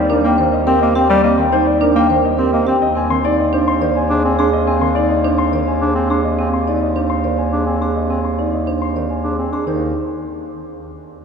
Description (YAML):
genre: classical, minimalist pattern music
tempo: 105 BPM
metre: 3/4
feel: straight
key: unclear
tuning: A4 = 440 Hz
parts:
  - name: dark concert grand piano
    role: melody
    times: 0.0-9.9 s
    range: G4 to C6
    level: -19 LUFS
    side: left 5 dB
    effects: none
  - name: clear bass clarinet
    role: bass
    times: 0.0-9.9 s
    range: Eb2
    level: -21 LUFS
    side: equal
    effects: none
  - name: marimba with medium mallets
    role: arpeggios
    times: 0.1-9.9 s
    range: C4 to D5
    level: -20 LUFS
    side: right 5 dB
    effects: none
  - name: warm bass clarinet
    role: accompaniment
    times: 0.2-9.9 s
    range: Eb3 to D4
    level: -21 LUFS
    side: equal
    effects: none
room: wet cathedral reverb, RT60 5.7 s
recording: recorded in a church or concert hall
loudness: -14 LUFS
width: side -6 dB against mid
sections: 0.0-9.7 A section; 9.7-11.2 B section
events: none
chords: 0.0 Ebmaj7; 2.8 Ab/Eb; 9.7 N.C.